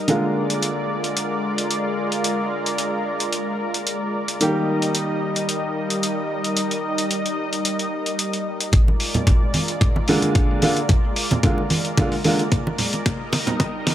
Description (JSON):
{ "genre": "nu-disco, nu disco", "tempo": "111 BPM", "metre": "4/4", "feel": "swing 54% on 16ths", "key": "Bb mixolydian", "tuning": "A4 = 439 Hz", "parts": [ { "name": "warm grand piano", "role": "accompaniment", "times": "0.0-12.4 s", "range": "D3 to G4", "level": "-24 LUFS", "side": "right 1 dB", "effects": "low-pass filter, slapback echo" }, { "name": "lush unison pad", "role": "sustained chords", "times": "0.0-13.9 s", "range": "G3 to Eb5", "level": "-24 LUFS", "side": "equal", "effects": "chorus, sidechain pumping" }, { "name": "dusty soul sampler-style drum kit", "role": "drums", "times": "0.1-13.9 s", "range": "hi-hat, toms", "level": "-24 LUFS", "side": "left 1 dB", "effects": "none" }, { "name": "overdriven fingered electric bass", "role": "bass", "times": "8.7-13.9 s", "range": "Ab1 to Bb2", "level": "-41 LUFS", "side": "equal", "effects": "none" }, { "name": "electronic kick drum", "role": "drums", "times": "8.7-13.7 s", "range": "none", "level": "-19 LUFS", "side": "equal", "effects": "none" }, { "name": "congas", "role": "percussion", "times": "8.9-13.9 s", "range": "none", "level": "-24 LUFS", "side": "right 2 dB", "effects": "none" } ], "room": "light reverb", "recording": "high-pass filter", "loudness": "-19 LUFS", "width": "side -11 dB against mid", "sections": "0.0-8.7 A section; 8.7-13.9 B section", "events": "filter sweep on grand piano 0.0-8.7; build-up 8.7-13.9; drum fill 8.7-13.9; filter sweep 8.7-13.9", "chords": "0.1 Bb7; 4.4 Eb; 8.7 Bb7; 13.1 Eb", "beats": "| 0.09 0.63 1.17 1.71 | 2.25 2.79 3.33 3.87 | 4.41 4.95 5.49 6.03 | 6.58 7.12 7.66 8.20 | 8.74 9.28 9.82 10.36 | 10.90 11.44 11.98 12.52 | 13.06 13.60" }